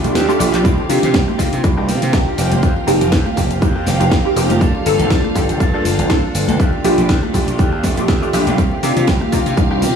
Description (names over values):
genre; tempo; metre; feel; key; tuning
filtered disco house; 121 BPM; 4/4; swing 55% on 16ths; C dorian; A4 = 440 Hz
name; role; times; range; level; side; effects
funky polysynth comp; accompaniment; 0.0-9.8 s; A3 to A4; -20 LUFS; equal; chorus, phaser, sidechain pumping, dub echo
string machine, full ensemble; sustained chords; 0.0-10.0 s; F4 to F5; -23 LUFS; left 1 dB; phaser, ensemble chorus, sidechain pumping
direct-recorded clean electric guitar; riff; 0.0-10.0 s; Eb3 to A4; -24 LUFS; right 2 dB; sidechain pumping
gritty slap bass; bass; 0.0-9.9 s; F1 to C3; -19 LUFS; equal; overdrive, tube saturation, sidechain pumping
house drum kit; drums; 0.0-9.9 s; cabasa, handclaps, hi-hat, rim click, snare drum; -23 LUFS; equal; sidechain pumping on hats, sidechain pumping on perc, dub echo
electronic kick drum; drums; 0.6-9.7 s; none; -17 LUFS; equal; none
tambourine and congas; percussion; 0.7-9.9 s; none; -26 LUFS; left 2 dB; sidechain pumping on perc
room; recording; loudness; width
light reverb, digital ambience; echo-heavy mix, studio reverb; -13 LUFS; side -7 dB against mid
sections
0.0-10.0 A section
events
kick drops out 0.1-0.6; drum fill 0.3-0.6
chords
0.0 Ebmaj9#11; 0.6 Cm7; 2.4 F9sus4; 4.6 Gm9; 6.6 Ebmaj9#11; 8.6 Cm7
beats
0.15 | 0.65 1.14 1.64 2.13 | 2.63 3.12 3.62 4.12 | 4.61 5.11 5.60 6.10 | 6.60 7.09 7.59 8.08 | 8.58 9.08 9.57